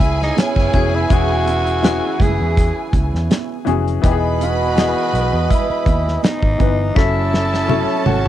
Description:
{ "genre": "lush 1970s-style soul", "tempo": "82 BPM", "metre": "4/4", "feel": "swing 54% on 16ths", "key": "E major", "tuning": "A4 = 440 Hz", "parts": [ { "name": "growling tenor saxophone", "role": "melody", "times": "0.0-8.3 s", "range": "C#4 to G#4", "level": "-21 LUFS", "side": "equal", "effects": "cassette tape" }, { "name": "rich studio violin section", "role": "second line", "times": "0.0-8.3 s", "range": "G#4 to B5", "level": "-26 LUFS", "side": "left 1 dB", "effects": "cassette tape" }, { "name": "clear baby grand piano", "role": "accompaniment", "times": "0.0-8.3 s", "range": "E3 to D#5", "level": "-23 LUFS", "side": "left 10 dB", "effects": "cassette tape" }, { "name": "warm horn section", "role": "stabs", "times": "0.0-8.3 s", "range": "A2 to D#5", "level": "-24 LUFS", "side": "right 10 dB", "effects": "cassette tape" }, { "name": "vintage muted fingered electric bass", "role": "bass", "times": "0.0-8.3 s", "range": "E1 to E2", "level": "-20 LUFS", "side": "equal", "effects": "transformer saturation" }, { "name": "damped 70s drum kit", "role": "drums", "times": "0.0-8.3 s", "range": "hi-hat, kick drum, snare drum, toms", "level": "-17 LUFS", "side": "equal", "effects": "cassette tape" }, { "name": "congas", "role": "percussion", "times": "0.0-8.2 s", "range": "none", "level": "-28 LUFS", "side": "right 12 dB", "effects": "none" }, { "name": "glockenspiel with brass mallets", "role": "texture", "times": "0.8-8.3 s", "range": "F#6 to B6", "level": "-31 LUFS", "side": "left 10 dB", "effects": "cassette tape" } ], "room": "little or no reverb", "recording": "home recording on cassette", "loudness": "-14 LUFS", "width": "side -12 dB against mid", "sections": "0.0-8.3 A section", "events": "drum fill 7.0-8.3", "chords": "0.0 E69; 4.0 Emaj9; 7.0 F#m7", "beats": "0.37 | 1.11 1.84 2.57 3.30 | 4.04 4.77 5.50 6.23 | 6.96 7.70" }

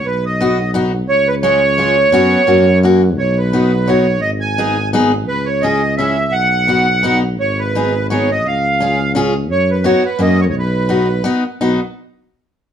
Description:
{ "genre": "alpine folk, alpine dance band", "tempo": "172 BPM", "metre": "3/4", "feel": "swing 55% on 8ths, rubato", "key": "B major", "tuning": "A4 = 440 Hz", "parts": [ { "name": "accordion", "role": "melody", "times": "0.0-11.2 s", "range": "B4 to G#5", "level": "-15 LUFS", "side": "right 3 dB", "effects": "light tremolo tuning" }, { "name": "mellow tuba", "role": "bass", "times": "0.0-11.8 s", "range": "G#1 to F#2", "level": "-17 LUFS", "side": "equal", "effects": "none" }, { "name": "picked steel-string acoustic guitar", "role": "accompaniment", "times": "0.4-11.8 s", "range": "G#3 to G#4", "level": "-16 LUFS", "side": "left 2 dB", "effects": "none" } ], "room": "wet studio reverb, RT60 0.7 s", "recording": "band playing live in one room", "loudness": "-12 LUFS", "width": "side -9 dB against mid", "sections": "0.0-11.6 A section; 11.6-12.7 B section", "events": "none", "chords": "0.1 B; 1.1 C#; 2.1 F#sus4; 2.5 F#; 3.2 B; 4.2 G#m; 5.3 C#m; 6.3 B; 7.4 G#m; 8.5 C#; 9.5 B/F#; 10.2 F#; 10.5 B", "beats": "| 0.05 0.40 0.74 | 1.08 1.43 1.77 | 2.12 2.47 2.83 | 3.19 3.54 3.89 | 4.24 4.59 4.94 | 5.29 5.63 5.98 | 6.33 6.68 7.04 | 7.39 7.75 8.11 | 8.46 8.81 9.16 | 9.50 9.85 10.20 | 10.54 10.89 11.25 | 11.61" }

